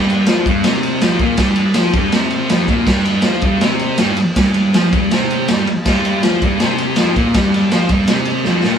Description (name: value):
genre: garage rock duo or trio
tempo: 161 BPM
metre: 4/4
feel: straight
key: unclear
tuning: A4 = 439 Hz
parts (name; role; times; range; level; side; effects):
- thick fuzz guitar; riff; 0.0-8.8 s; F2 to F4; -15 LUFS; equal; distortion
- crunchy breakbeat drum kit; drums; 0.1-8.7 s; crash cymbal, kick drum, ride cymbal, snare drum; -16 LUFS; equal; none
room: light reverb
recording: band playing live in one room, lossy compression artefacts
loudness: -12 LUFS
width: side -8 dB against mid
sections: 0.0-8.8 A section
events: drum fill 8.5-8.8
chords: 0.0 Fsus24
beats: 0.28 0.65 1.02 | 1.39 1.76 2.13 2.51 | 2.88 3.25 3.62 4.00 | 4.37 4.74 5.11 5.49 | 5.86 6.23 6.60 6.97 | 7.35 7.72 8.09 8.46